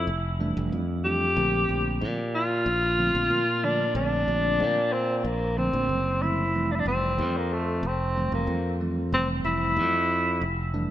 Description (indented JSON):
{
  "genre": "electric jazz fusion",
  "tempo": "93 BPM",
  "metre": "4/4",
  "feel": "straight",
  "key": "F major",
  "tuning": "A4 = 440 Hz",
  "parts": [
    { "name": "breathy tenor saxophone", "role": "melody", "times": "0.0-10.7 s", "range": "A3 to G4", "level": "-25 LUFS", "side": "left 1 dB", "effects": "ping-pong delay" },
    { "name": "modern bright fingered electric bass", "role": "bass", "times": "0.0-10.9 s", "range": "F1 to Bb2", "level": "-28 LUFS", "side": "equal", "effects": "none" },
    { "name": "bell-like tine electric piano", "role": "accompaniment", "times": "0.4-10.9 s", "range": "D3 to D4", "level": "-32 LUFS", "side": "right 3 dB", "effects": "none" }
  ],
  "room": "moderate lush hall reverb, RT60 2.2 s",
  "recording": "bright 1980s-style digital production",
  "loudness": "-23 LUFS",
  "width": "side -12 dB against mid",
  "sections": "0.0-10.9 A section",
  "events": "none",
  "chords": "0.0 Fmaj9; 1.4 Bbmaj9; 6.5 Fmaj9"
}